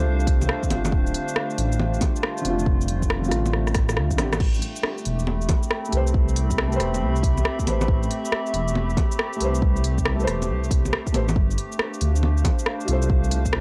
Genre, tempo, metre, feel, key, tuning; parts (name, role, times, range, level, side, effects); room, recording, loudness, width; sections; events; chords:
future garage; 138 BPM; 4/4; swing 65% on 16ths; A minor; A4 = 439 Hz
felt-muted upright piano; accompaniment; 0.0-13.6 s; D3 to C5; -32 LUFS; equal; sidechain pumping, tape echo
warbly tape-like pad; sustained chords; 0.0-13.6 s; A3 to B5; -32 LUFS; equal; chorus, built-in reverb, sidechain pumping
dark detuned saw bass; bass; 0.0-13.6 s; D1 to D2; -26 LUFS; equal
drifting glass-harmonics texture; texture; 0.0-4.4 s; G3 to G4; -44 LUFS; equal
organic electronic drum kit; drums; 0.2-13.6 s; bongos, crash cymbal, hi-hat, rim click, shaker; -30 LUFS; equal; small room reverb
electronic kick drum; drums; 0.3-13.5 s; -25 LUFS; equal; small room reverb
digital ambience; dry, gritty hardware recording; -23 LUFS; mono
0.0-4.4 A section; 4.4-13.6 A section
drum fill 3.5-4.4
0.0 G9sus4; 0.9 Dm7; 4.4 Am9; 11.4 G9sus4